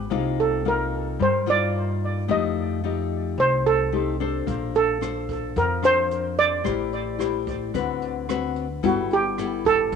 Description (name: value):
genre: bossa nova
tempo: 110 BPM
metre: 4/4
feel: straight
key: unclear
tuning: A4 = 442 Hz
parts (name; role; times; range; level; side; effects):
- nylon-string guitar; accompaniment; 0.0-10.0 s; C3 to C5; -27 LUFS; left 12 dB; none
- upright bass; bass; 0.0-10.0 s; G1 to G2; -30 LUFS; right 2 dB; none
- steel pan; melody; 0.4-10.0 s; F#4 to Eb5; -22 LUFS; right 3 dB; tape echo
- jazz brush drum kit; drums; 4.5-10.0 s; hi-hat, kick drum, rim click; -37 LUFS; right 6 dB; none
room: light reverb, small room ambience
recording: 1960s-style stereo with parts hard left and right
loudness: -21 LUFS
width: side -6 dB against mid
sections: 0.0-10.0 A section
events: none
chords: 0.1 Cm11; 2.3 F9; 4.5 Bbmaj9; 6.7 Am7; 7.7 D6; 8.8 G69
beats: | 0.11 0.66 1.20 1.75 | 2.29 2.84 3.38 3.93 | 4.47 5.02 5.56 6.11 | 6.65 7.20 7.74 8.29 | 8.83 9.38 9.92